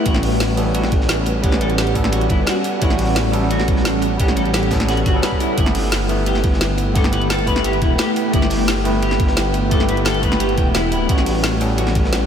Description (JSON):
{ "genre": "liquid drum and bass", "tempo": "174 BPM", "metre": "4/4", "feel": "straight", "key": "unclear", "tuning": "A4 = 439 Hz", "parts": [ { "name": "overdriven tine electric piano", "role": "accompaniment", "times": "0.0-12.3 s", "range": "G3 to F#5", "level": "-23 LUFS", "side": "equal", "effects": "tape echo" }, { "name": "ethereal airy pad", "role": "sustained chords", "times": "0.0-12.3 s", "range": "G3 to G5", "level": "-23 LUFS", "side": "equal", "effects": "ensemble chorus, built-in reverb, tremolo, sidechain pumping" }, { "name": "clean electric guitar", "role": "arpeggios", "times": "0.0-11.9 s", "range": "E4 to G5", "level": "-25 LUFS", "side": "left 1 dB", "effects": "lush chorus, analog delay" }, { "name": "dark detuned saw bass", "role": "bass", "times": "0.1-12.3 s", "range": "D1 to A1", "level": "-21 LUFS", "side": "equal", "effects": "tube saturation" }, { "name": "crunchy breakbeat drum kit", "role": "drums", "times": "0.1-12.2 s", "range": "hi-hat, ride cymbal, snare drum", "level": "-30 LUFS", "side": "equal", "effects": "high-pass filter on cymbals, high-pass filter on hats, high-pass filter on snare, high-pass filter on room" }, { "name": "drum and bass drum kit", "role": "drums", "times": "0.1-12.2 s", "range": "hi-hat, snare drum", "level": "-24 LUFS", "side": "equal", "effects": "none" }, { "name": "electronic kick drum", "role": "drums", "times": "0.1-12.0 s", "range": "none", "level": "-19 LUFS", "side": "equal", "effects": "none" } ], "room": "moderate cathedral reverb, RT60 6.5 s", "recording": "dreamy mix soaked in reverb", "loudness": "-15 LUFS", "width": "side -8 dB against mid", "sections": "0.0-12.3 A section", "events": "none", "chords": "0.1 A13; 5.6 G69; 11.1 A13", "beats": "| 0.06 0.40 0.75 1.09 | 1.44 1.78 2.13 2.47 | 2.82 3.16 3.51 3.85 | 4.20 4.54 4.88 5.23 | 5.58 5.92 6.26 6.61 | 6.95 7.30 7.64 7.99 | 8.33 8.68 9.02 9.37 | 9.71 10.06 10.40 10.75 | 11.09 11.44 11.78 12.13" }